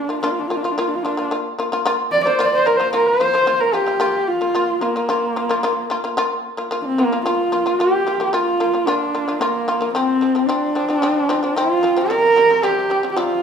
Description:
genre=mongolian traditional, Mongolian folk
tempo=111 BPM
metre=4/4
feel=straight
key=Bb gong mode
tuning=A4 = 440 Hz
part: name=dark horsehead fiddle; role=melody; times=0.0-13.4 s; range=Bb3 to D5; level=-17 LUFS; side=right 1 dB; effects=none
part: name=shamisen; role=arpeggios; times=0.1-13.4 s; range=C3 to F4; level=-21 LUFS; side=left 2 dB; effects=none
room=wet large studio reverb, RT60 1.1 s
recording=band playing live in one room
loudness=-16 LUFS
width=side -7 dB against mid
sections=0.0-7.8 A section; 7.8-13.4 B section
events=none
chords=0.0 Bb5; 9.9 F5; 12.1 C5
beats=0.23 0.77 | 1.31 1.85 2.39 2.93 | 3.47 4.01 4.55 5.09 | 5.63 6.17 6.71 7.25 | 7.79 8.33 8.87 9.41 | 9.95 10.48 11.02 11.56 | 12.10 12.63 13.17

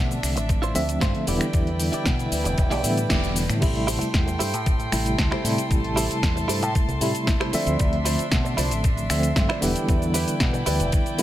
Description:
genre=nu-disco, nu disco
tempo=115 BPM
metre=4/4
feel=straight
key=A minor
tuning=A4 = 440 Hz
part: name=tine electric piano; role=accompaniment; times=0.0-11.2 s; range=C3 to E5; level=-26 LUFS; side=equal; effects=medium tremolo, sidechain pumping, dub echo
part: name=warm studio violin section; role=sustained chords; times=0.0-11.2 s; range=A3 to C6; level=-30 LUFS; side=equal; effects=sidechain pumping
part: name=fingered electric bass with an envelope filter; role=bass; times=0.0-10.9 s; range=E1 to B2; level=-27 LUFS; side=equal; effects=none
part: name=direct-recorded clean electric guitar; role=riff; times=0.1-11.0 s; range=E4 to E5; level=-31 LUFS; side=right 3 dB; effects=wide subtle chorus, dub echo
part: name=house drum kit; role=drums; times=0.1-11.2 s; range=crash cymbal, finger snaps, hi-hat, shaker, snare drum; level=-28 LUFS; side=left 1 dB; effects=small room ambience
part: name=electronic kick drum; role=drums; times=0.5-11.0 s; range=none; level=-24 LUFS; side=equal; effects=small room ambience
room=light reverb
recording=none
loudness=-20 LUFS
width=side -13 dB against mid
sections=0.0-3.6 A section; 3.6-11.2 B section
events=band accent 3.1; drop 3.6-11.2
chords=0.0 Dm9; 1.3 Em7; 3.6 Am7; 7.5 Dm9; 9.6 Em7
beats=0.49 1.01 | 1.54 2.06 2.58 3.10 | 3.62 4.14 4.67 5.19 | 5.71 6.23 6.75 7.28 | 7.80 8.32 8.84 9.36 | 9.88 10.41 10.93

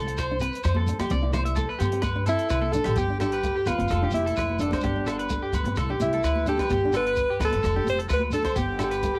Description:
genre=highlife guitar band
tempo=129 BPM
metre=4/4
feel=straight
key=G mixolydian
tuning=A4 = 439 Hz
part: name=electric guitar at the edge of break-up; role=arpeggios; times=0.0-9.2 s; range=G4 to E5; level=-33 LUFS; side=equal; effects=subtle chorus, cassette tape, analog delay
part: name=upright bass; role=bass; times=0.0-9.1 s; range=F1 to G2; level=-31 LUFS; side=equal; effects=none
part: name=fingerpicked steel-string acoustic guitar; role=accompaniment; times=0.1-9.2 s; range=A3 to E4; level=-36 LUFS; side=equal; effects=cassette tape
part: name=compact cocktail drum kit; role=drums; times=0.1-9.1 s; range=hi-hat, kick drum, rim click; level=-36 LUFS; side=equal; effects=none
part: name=shekere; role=percussion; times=0.1-9.1 s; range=none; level=-39 LUFS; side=equal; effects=none
part: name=agogo bells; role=percussion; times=0.2-8.9 s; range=none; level=-41 LUFS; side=equal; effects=none
part: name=congas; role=percussion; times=0.7-8.5 s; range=none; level=-37 LUFS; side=equal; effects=none
part: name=warm alto saxophone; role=melody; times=2.3-9.2 s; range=D4 to C5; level=-28 LUFS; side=equal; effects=cassette tape
room=light reverb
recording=home recording on cassette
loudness=-25 LUFS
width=mono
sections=0.0-3.0 A section; 3.0-9.2 B section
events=drum fill 2.6-3.0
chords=0.0 F; 1.1 C; 3.0 G; 3.9 F; 4.8 G; 5.8 C; 6.7 G; 7.6 F; 8.6 G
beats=0.17 0.64 | 1.10 1.57 2.04 2.50 | 2.97 3.44 3.90 4.37 | 4.84 5.30 5.77 6.24 | 6.70 7.17 7.63 8.10 | 8.57 9.03

